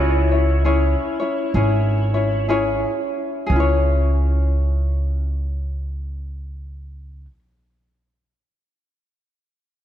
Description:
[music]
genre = Hawaiian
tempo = 58-70 BPM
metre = 4/4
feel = swing 63% on 8ths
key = C# minor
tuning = A4 = 441 Hz
[part]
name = pedal steel guitar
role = melody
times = 0.0-2.5 s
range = E4 to C#5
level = -28 LUFS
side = equal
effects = analog chorus
[part]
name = tenor ukulele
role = accompaniment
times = 0.0-7.4 s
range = C#4 to C#5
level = -22 LUFS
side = left 2 dB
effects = none
[part]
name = upright bass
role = bass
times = 0.0-7.2 s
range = G#1 to C#2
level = -19 LUFS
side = equal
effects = none
[sound]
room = moderate lush hall reverb, RT60 2.9 s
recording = dreamy mix soaked in reverb, faint mains hum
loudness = -18 LUFS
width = side -11 dB against mid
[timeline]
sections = 0.0-3.5 A section; 3.5-7.6 B section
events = slowing down 0.0-3.5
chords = 0.0 C#m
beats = 0.65 1.55 2.50 | 3.50 4.54 5.58 6.61

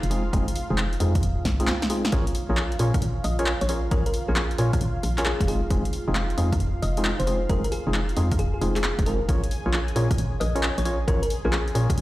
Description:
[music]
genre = UK garage, two-step garage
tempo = 134 BPM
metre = 4/4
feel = swing 66% on 16ths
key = Bb minor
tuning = A4 = 440 Hz
[part]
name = warm analog pad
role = sustained chords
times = 0.0-12.0 s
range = F4 to Ab5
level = -36 LUFS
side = right 2 dB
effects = chorus, sidechain pumping
[part]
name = hollow knocking FM bass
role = bass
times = 0.0-12.0 s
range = Eb1 to Bb2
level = -25 LUFS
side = equal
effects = none
[part]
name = punchy analog drum machine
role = drums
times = 0.0-12.0 s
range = bongos, handclaps, hi-hat, rim click, snare drum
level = -30 LUFS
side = equal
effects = overdrive
[part]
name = percussive organ stab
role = stabs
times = 0.1-11.9 s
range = Ab3 to Db5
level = -29 LUFS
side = equal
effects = chorus, cassette tape, tape echo
[part]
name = electronic kick drum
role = drums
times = 0.3-12.0 s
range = none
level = -25 LUFS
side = equal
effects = overdrive
[part]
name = thumb-piano-like synth pluck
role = melody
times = 3.2-11.6 s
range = Ab4 to Eb5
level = -32 LUFS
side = left 1 dB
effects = chorus, cassette tape, tape echo
[sound]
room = moderate studio reverb, RT60 0.5 s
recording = played on a big sound system in a bare room, large studio reverb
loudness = -22 LUFS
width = side -16 dB against mid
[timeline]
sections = 0.0-12.0 A section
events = drum fill 1.5-2.1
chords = 0.0 Fm7; 2.1 Bbm7; 5.5 Fm7; 9.3 Bbm7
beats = | 0.33 0.78 1.23 1.68 | 2.12 2.57 3.02 3.47 | 3.92 4.36 4.81 5.26 | 5.71 6.15 6.60 7.05 | 7.50 7.95 8.39 8.84 | 9.29 9.74 10.18 10.63 | 11.08 11.53 11.97

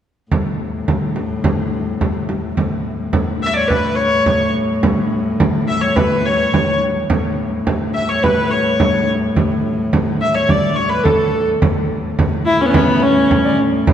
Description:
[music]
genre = medieval dance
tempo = 106 BPM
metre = 2/4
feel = straight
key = A major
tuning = A4 = 440 Hz
[part]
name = rich viola da gamba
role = drone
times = 0.3-13.9 s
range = A2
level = -22 LUFS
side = left 2 dB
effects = none
[part]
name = frame drum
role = percussion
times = 0.3-13.9 s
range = none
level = -18 LUFS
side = right 2 dB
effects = none
[part]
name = clear hurdy-gurdy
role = melody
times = 3.4-13.6 s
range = B3 to E5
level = -17 LUFS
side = equal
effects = none
[part]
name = bright soprano recorder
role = second line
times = 12.5-13.6 s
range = C#5 to B5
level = -19 LUFS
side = left 5 dB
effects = none
[sound]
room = wet church reverb, RT60 2.9 s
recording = dark, warm production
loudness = -14 LUFS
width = side -9 dB against mid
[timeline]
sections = 0.3-2.6 A section; 2.6-11.6 B section; 11.6-13.9 B section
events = none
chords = none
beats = | 0.31 0.88 | 1.44 2.01 | 2.58 3.14 | 3.71 4.27 | 4.84 5.40 | 5.97 6.54 | 7.10 7.67 | 8.23 8.80 | 9.36 9.93 | 10.49 11.06 | 11.62 12.19 | 12.75 13.32 | 13.88

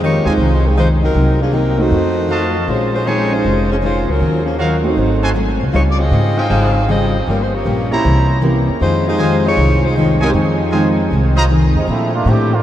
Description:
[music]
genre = jazz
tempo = 156 BPM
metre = 4/4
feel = swing 66% on 8ths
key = F minor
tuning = A4 = 441 Hz
[part]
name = dark saxophone section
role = melody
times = 0.0-11.5 s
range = F3 to F5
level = -18 LUFS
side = left 1 dB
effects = none
[part]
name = picked steel-string acoustic guitar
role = accompaniment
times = 0.0-12.5 s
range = F2 to Gb4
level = -20 LUFS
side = left 2 dB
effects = none
[part]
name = upright bass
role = bass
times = 0.0-12.6 s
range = F1 to Bb2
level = -16 LUFS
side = equal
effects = none
[part]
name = warm concert grand piano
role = accompaniment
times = 0.2-5.3, 7.9-11.3 s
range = Ab3 to G5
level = -23 LUFS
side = right 4 dB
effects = none
[part]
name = clear trumpet section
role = stabs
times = 0.2-11.4 s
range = Db4 to Bb5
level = -23 LUFS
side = right 1 dB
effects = none
[part]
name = clear trombone section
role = second line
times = 11.8-12.6 s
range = E3 to G4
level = -18 LUFS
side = right 3 dB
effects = none
[sound]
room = moderate huge ambient reverb, RT60 8.2 s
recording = in a vast, echoing space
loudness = -12 LUFS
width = side -12 dB against mid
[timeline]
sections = 0.0-11.9 A section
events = none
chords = 0.0 Fm7; 1.1 Cm7b5; 1.9 F7b9; 2.7 Bbm11; 4.2 Ebm9; 5.0 Ab7b9; 5.7 Dbmaj9#11; 7.3 Gm7b5; 8.0 C7b9; 8.8 Fm7; 11.9 Bbmaj7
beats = 0.37 0.75 | 1.14 1.52 1.91 2.29 | 2.67 3.06 3.44 3.82 | 4.21 4.59 4.97 5.36 | 5.74 6.12 6.51 6.89 | 7.27 7.66 8.04 8.42 | 8.81 9.19 9.57 9.96 | 10.34 10.72 11.11 11.49 | 11.88 12.26

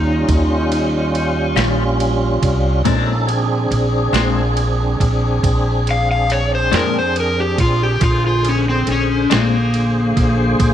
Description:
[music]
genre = slow blues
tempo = 46 BPM (dotted quarters)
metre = 12/8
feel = straight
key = Bb mixolydian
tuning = A4 = 439 Hz
[part]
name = overdriven slide guitar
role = melody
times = 0.0-10.7 s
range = Bb3 to F5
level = -18 LUFS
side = left 2 dB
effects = none
[part]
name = tonewheel organ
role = sustained chords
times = 0.0-10.7 s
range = D3 to C5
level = -20 LUFS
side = right 1 dB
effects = overdrive, chorus vibrato, slow rotary speaker
[part]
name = upright bass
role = bass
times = 0.0-10.7 s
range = Bb1 to F2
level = -18 LUFS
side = equal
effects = none
[part]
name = boom bap sampler-style drum kit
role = drums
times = 0.3-10.7 s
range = kick drum, ride cymbal, snare drum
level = -23 LUFS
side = right 3 dB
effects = none
[part]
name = clean electric guitar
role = accompaniment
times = 1.6-9.6 s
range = Bb2 to F4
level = -22 LUFS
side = left 12 dB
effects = harmonic tremolo
[sound]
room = light reverb, digital ambience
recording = 1960s-style stereo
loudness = -14 LUFS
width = side -10 dB against mid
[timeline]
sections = 0.0-10.7 A section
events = electric slide guitar solo 0.0-10.7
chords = 0.0 Eb9; 2.9 Bb9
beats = 0.28 1.57 | 2.86 4.15 5.44 6.73 | 8.02 9.31 10.60

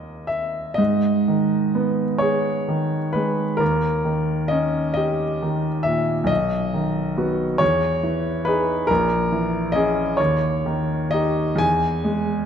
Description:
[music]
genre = classical, romantic nocturne for solo piano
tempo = 40-48 BPM (dotted quarters)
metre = 12/8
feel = rubato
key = unclear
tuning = A4 = 440 Hz
[part]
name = clear grand piano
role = solo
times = 0.0-12.5 s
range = A#1 to G#5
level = -19 LUFS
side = equal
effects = none
[sound]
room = moderate concert hall reverb, RT60 1.9 s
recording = none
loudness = -19 LUFS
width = side -8 dB against mid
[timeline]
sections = 0.0-12.5 A section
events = none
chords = 0.0 D#; 0.8 G#m; 3.6 D#7; 6.3 B; 7.6 Emaj7; 8.9 A#m7b5; 10.2 D#; 11.6 E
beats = | 0.79 2.22 3.61 4.98 | 6.30 7.61 8.90 10.19 | 11.61

